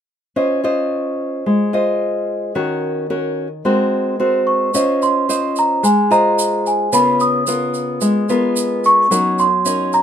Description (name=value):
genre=bossa nova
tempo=110 BPM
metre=4/4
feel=straight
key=Db major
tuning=A4 = 439 Hz
part: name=nylon-string guitar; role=accompaniment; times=0.4-10.0 s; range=Db3 to Eb5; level=-17 LUFS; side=left 1 dB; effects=none
part: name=celesta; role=melody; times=4.5-10.0 s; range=Ab5 to Eb6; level=-15 LUFS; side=right 1 dB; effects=none
part: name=tube shaker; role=percussion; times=4.7-10.0 s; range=none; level=-25 LUFS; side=right 7 dB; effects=none
room=light reverb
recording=minimal, uncompressed stereo recording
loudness=-14 LUFS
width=side -8 dB against mid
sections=0.4-4.7 A section; 4.7-10.0 B section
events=none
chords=0.4 Dbmaj9; 2.6 Ebm7; 3.6 Ab9; 4.7 Dbmaj9; 6.9 Db13; 9.1 Gb6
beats=| 0.37 0.92 1.46 2.01 | 2.56 3.10 3.65 4.20 | 4.74 5.29 5.83 6.38 | 6.92 7.47 8.02 8.56 | 9.11 9.65